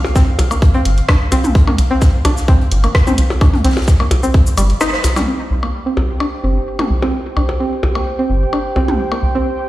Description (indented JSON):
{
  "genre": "minimal techno",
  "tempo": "129 BPM",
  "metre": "4/4",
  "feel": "straight",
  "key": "unclear",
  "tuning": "A4 = 440 Hz",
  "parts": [
    { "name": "rubbery square bass", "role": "bass", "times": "0.0-9.4 s", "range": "G1 to C2", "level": "-15 LUFS", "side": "equal", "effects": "sidechain pumping" },
    { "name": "electronic percussion blips and toms", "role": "percussion", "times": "0.0-9.2 s", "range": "none", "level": "-22 LUFS", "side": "left 1 dB", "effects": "dub echo" },
    { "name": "bubbling stepped-filter texture", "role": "texture", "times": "0.0-5.3 s", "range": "F5", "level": "-33 LUFS", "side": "right 1 dB", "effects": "chorus, built-in reverb, sidechain pumping" },
    { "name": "loose indie drum kit", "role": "drums", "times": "0.1-5.3 s", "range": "hi-hat, snare drum", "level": "-32 LUFS", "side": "left 2 dB", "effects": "high-pass filter on hats, high-pass filter on snare, high-pass filter on room" },
    { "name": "string-like resonator pluck", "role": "riff", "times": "0.2-9.4 s", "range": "G3 to C5", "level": "-21 LUFS", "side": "equal", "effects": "chorus, sidechain pumping, dub echo" },
    { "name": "electronic kick drum", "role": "drums", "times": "0.2-4.4 s", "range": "none", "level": "-11 LUFS", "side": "equal", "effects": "none" },
    { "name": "punchy analog drum machine", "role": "drums", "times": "0.2-5.3 s", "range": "cabasa, hi-hat, rim click", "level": "-23 LUFS", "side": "equal", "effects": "none" },
    { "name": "warbly tape-like pad", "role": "texture", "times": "6.0-9.7 s", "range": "G4 to G5", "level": "-23 LUFS", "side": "right 3 dB", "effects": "chorus, built-in reverb, sidechain pumping" }
  ],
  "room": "light reverb",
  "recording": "played on a big sound system in a bare room, stone room reverb",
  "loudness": "-12 LUFS",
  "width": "side -16 dB against mid",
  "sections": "0.0-5.3 A section; 5.3-9.7 B section",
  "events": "break 4.8-5.3; band accent 4.8",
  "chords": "0.0 C5"
}